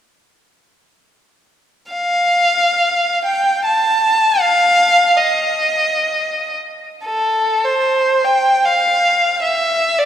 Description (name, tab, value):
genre	classical, free, expressive piece for unaccompanied violin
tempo	48-84 BPM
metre	3/4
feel	rubato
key	F mixolydian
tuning	A4 = 442 Hz
part	rich violin	solo	1.9-10.1 s	A4 to A5	-13 LUFS	equal	none
room	wet church reverb, RT60 3.4 s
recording	minimal, uncompressed stereo recording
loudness	-13 LUFS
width	side -10 dB against mid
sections	1.9-7.0 A section; 7.0-10.1 B section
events	none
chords	none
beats	| 1.93 2.81 3.65 | 4.40 5.15 6.00 | 7.04 7.84 8.63 | 9.41